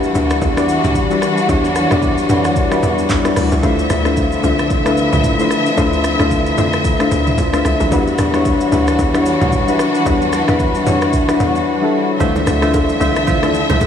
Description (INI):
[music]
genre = amapiano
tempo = 112 BPM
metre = 4/4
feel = swing 58% on 16ths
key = unclear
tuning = A4 = 435 Hz
[part]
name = soft electric-piano-like synth keys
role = accompaniment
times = 0.0-13.9 s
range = G3 to D5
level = -16 LUFS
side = left 2 dB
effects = chorus
[part]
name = dark studio string section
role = sustained chords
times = 0.0-13.9 s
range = D3 to E5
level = -19 LUFS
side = equal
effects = sidechain pumping
[part]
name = tight log drum bass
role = bass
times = 0.0-13.8 s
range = A1 to F2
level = -20 LUFS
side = equal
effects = none
[part]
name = deep house drum kit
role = drums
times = 0.0-13.9 s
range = handclaps, hi-hat, kick drum, rim click, shaker, toms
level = -21 LUFS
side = equal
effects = vintage 12-bit sampler grit
[part]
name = percussive organ stab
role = stabs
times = 12.2-13.8 s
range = F4 to E5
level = -22 LUFS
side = right 5 dB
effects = chorus, tape echo
[part]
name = congas and bongos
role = percussion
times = 12.2-13.9 s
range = none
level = -24 LUFS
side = right 3 dB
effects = none
[sound]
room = wet huge ambient reverb, RT60 8.2 s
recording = dreamy mix soaked in reverb, studio reverb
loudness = -13 LUFS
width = side -8 dB against mid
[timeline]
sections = 0.0-13.9 A section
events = silent gap 11.7-12.2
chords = 0.0 Em9; 3.6 Dm9; 7.9 Em9; 12.2 Dm9